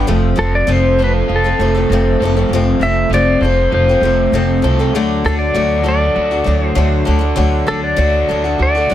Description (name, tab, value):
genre	rock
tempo	99 BPM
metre	4/4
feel	straight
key	unclear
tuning	A4 = 441 Hz
part	picked old ladder-braced acoustic guitar	accompaniment	0.0-8.9 s	F2 to A4	-18 LUFS	left 4 dB	none
part	crunchy overdriven guitar	riff	0.0-8.9 s	D3 to A4	-20 LUFS	right 2 dB	spring reverb
part	upright bass	bass	0.0-8.9 s	F1 to D2	-16 LUFS	right 1 dB	none
part	pedal steel guitar	melody	0.4-8.9 s	A4 to E5	-16 LUFS	left 1 dB	none
room	moderate studio reverb, RT60 0.5 s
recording	none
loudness	-12 LUFS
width	side -12 dB against mid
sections	0.0-8.9 A section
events	none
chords	0.1 F; 4.9 D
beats	| 0.09 0.70 1.30 1.91 | 2.52 3.12 3.73 4.33 | 4.94 5.55 6.16 6.76 | 7.37 7.97 8.58